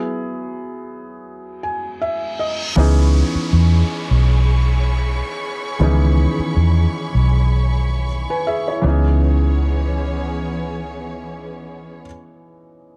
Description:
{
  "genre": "contemporary R&B",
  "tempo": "79 BPM",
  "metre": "4/4",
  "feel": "swing 54% on 16ths",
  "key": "C# minor",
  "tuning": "A4 = 443 Hz",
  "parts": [
    { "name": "felt-muted upright piano", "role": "accompaniment", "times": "0.0-13.0 s", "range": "D#3 to G#5", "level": "-26 LUFS", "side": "equal", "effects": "low-pass filter" },
    { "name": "reverse cymbal and downlifter", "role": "sound effects", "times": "2.1-8.8 s", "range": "none", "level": "-34 LUFS", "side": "equal", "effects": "none" },
    { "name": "warm symphonic string section", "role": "sustained chords", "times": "2.8-12.0 s", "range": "E3 to C#6", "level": "-31 LUFS", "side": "equal", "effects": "none" },
    { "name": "vintage muted fingered electric bass", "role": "bass", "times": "2.8-12.0 s", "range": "B1 to E2", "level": "-18 LUFS", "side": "equal", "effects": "none" }
  ],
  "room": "studio ambience",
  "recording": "dark, warm production",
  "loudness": "-18 LUFS",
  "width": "mono",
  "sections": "0.0-2.8 A section; 2.8-8.8 B section; 8.8-11.9 C section",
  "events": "felt piano fill 1.2-2.8; reverse cymbal 2.1-2.8",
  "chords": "0.0 E; 2.8 C#m7",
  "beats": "0.49 1.25 2.01 | 2.77 3.53 4.29 5.04 | 5.80 6.56 7.32 8.08 | 8.84 9.60 10.36 11.12"
}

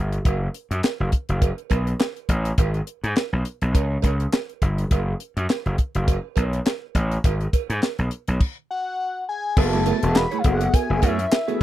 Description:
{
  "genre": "early-eighties boogie funk",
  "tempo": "103 BPM",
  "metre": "4/4",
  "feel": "swing 56% on 16ths",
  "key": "F# minor",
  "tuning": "A4 = 440 Hz",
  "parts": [
    { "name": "gritty slap bass", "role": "bass", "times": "0.0-11.6 s", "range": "E1 to G#2", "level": "-22 LUFS", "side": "equal", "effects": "overdrive" },
    { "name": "tight funk drum kit", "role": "drums", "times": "0.1-11.6 s", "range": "crash cymbal, handclaps, hi-hat, kick drum, snare drum", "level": "-20 LUFS", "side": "equal", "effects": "none" },
    { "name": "cowbell", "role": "percussion", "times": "0.3-11.5 s", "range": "none", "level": "-31 LUFS", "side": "right 21 dB", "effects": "none" },
    { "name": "fat analog lead", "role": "melody", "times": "8.7-11.6 s", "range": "E5 to B5", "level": "-26 LUFS", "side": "left 3 dB", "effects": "slapback echo" },
    { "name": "mellow tine electric piano", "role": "accompaniment", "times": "9.6-11.6 s", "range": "B3 to E5", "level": "-26 LUFS", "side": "left 2 dB", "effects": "overdrive, medium stereo tremolo" },
    { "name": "mellow electric guitar", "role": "riff", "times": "9.6-11.6 s", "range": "A3 to C#5", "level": "-27 LUFS", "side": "right 9 dB", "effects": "analog chorus" }
  ],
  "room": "little or no reverb",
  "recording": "dry, close 1970s-style studio recording",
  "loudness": "-20 LUFS",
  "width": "side -14 dB against mid",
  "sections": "0.0-9.6 A section; 9.6-11.6 B section",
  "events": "stop 8.4-9.6",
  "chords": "0.2 F#madd11; 2.6 G#m; 3.7 N.C.; 4.9 F#madd11; 7.2 G#m; 8.4 N.C.; 9.6 F#m11",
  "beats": "| 0.25 0.83 1.42 2.00 | 2.58 3.16 3.75 4.33 | 4.91 5.49 6.08 6.66 | 7.24 7.82 8.41 8.99 | 9.57 10.15 10.74 11.32"
}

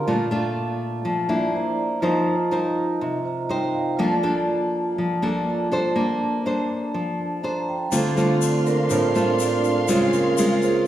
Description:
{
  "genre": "bossa nova",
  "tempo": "122 BPM",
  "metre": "4/4",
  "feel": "straight",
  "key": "Bb major",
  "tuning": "A4 = 440 Hz",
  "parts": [
    { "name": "nylon-string guitar", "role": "accompaniment", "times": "0.0-10.9 s", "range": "A2 to C5", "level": "-22 LUFS", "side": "left 1 dB", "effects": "none" },
    { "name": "vibraphone with medium mallets", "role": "accompaniment", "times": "0.0-10.9 s", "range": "A3 to Bb5", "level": "-24 LUFS", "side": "right 3 dB", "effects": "none" },
    { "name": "dark studio string section", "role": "sustained chords", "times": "7.9-10.9 s", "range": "D4 to C6", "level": "-28 LUFS", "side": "equal", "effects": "none" },
    { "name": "tube shaker", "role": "percussion", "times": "7.9-10.9 s", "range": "none", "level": "-33 LUFS", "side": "left 6 dB", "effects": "none" }
  ],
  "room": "wet recital hall reverb, RT60 1.6 s",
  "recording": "recorded in a church or concert hall",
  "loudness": "-20 LUFS",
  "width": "side -12 dB against mid",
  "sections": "0.0-7.9 A section; 7.9-10.9 B section",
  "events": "vibraphone fill 3.3-4.0, 7.2-7.9; vibraphone solo 7.9-10.9",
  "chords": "0.1 Bbmaj7; 1.5 C9; 2.0 F7sus4; 4.0 Bbmaj7/F; 7.9 Dm7; 9.9 Dbmaj7",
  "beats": "| 0.06 0.55 1.04 1.53 | 2.02 2.52 3.01 3.50 | 3.99 4.48 4.97 5.46 | 5.96 6.45 6.94 7.43 | 7.92 8.41 8.90 9.39 | 9.88 10.37 10.86"
}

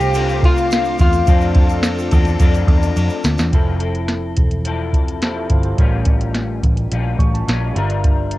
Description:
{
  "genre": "indie pop, bedroom pop",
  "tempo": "106 BPM",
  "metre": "4/4",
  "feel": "straight",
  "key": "F major",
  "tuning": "A4 = 442 Hz",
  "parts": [
    { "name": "electric guitar at the edge of break-up", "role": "melody", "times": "0.0-2.9 s", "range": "F4 to G4", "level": "-20 LUFS", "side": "left 1 dB", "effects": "lush chorus, cassette tape" },
    { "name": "electric guitar through a small old amp", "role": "accompaniment", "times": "0.0-8.4 s", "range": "A2 to Bb4", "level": "-24 LUFS", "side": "left 7 dB", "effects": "analog chorus, warbly pitch drift" },
    { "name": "overdriven tine electric piano", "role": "accompaniment", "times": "0.0-8.4 s", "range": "F3 to C#6", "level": "-28 LUFS", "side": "right 7 dB", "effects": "cassette tape" },
    { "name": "string machine, violas", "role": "sustained chords", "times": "0.0-3.5 s", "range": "A4 to D6", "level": "-30 LUFS", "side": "right 1 dB", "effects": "phaser, ensemble chorus" },
    { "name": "vintage muted picked electric bass", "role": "bass", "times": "0.0-8.4 s", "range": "E1 to F2", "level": "-20 LUFS", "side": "equal", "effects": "none" },
    { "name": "soft vintage rhythm box", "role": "drums", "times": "0.0-8.4 s", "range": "hi-hat, kick drum, ride cymbal, snare drum", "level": "-16 LUFS", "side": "equal", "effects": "cassette tape" },
    { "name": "egg shaker", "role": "percussion", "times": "0.0-3.5 s", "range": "none", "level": "-40 LUFS", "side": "right 9 dB", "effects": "none" }
  ],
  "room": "little or no reverb",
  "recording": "home recording on cassette",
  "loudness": "-14 LUFS",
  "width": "side -17 dB against mid",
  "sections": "0.0-3.5 A section; 3.5-8.4 B section",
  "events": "drum fill 3.0-3.5; tine electric piano fill 6.9-8.0",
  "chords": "0.0 Dm7; 1.3 F6; 3.5 Fmaj7; 5.8 A7b9b13; 7.8 Gm7",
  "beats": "0.15 0.71 | 1.28 1.84 2.40 2.96 | 3.53 4.09 4.66 5.22 | 5.78 6.35 6.91 7.48 | 8.04"
}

